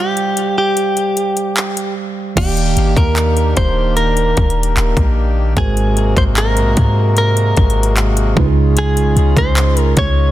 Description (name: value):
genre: contemporary R&B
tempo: 75 BPM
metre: 4/4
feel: straight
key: unclear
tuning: A4 = 440 Hz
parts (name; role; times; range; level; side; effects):
- direct-recorded clean electric guitar; melody; 0.0-10.3 s; G4 to Db5; -18 LUFS; left 1 dB; ping-pong delay
- mellow tine electric piano; accompaniment; 0.0-10.3 s; Ab2 to F5; -20 LUFS; right 6 dB; none
- trap drum kit; drums; 0.2-10.2 s; crash cymbal, handclaps, hi-hat, kick drum; -18 LUFS; left 1 dB; none
- hand-pumped harmonium; sustained chords; 2.4-10.3 s; C3 to G4; -23 LUFS; left 2 dB; none
- clean 808-style bass; bass; 2.4-10.3 s; Eb1 to Ab2; -15 LUFS; equal; none
room: digital ambience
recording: dense, heavily limited modern master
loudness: -12 LUFS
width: side -14 dB against mid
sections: 0.0-2.4 A section; 2.4-10.3 B section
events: break 0.0-2.4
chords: 0.0 G7sus4; 2.4 Ebmaj7; 5.6 Ab9; 8.4 Dbmaj7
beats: 0.77 1.57 | 2.37 3.17 3.97 4.77 | 5.57 6.37 7.17 7.97 | 8.77 9.57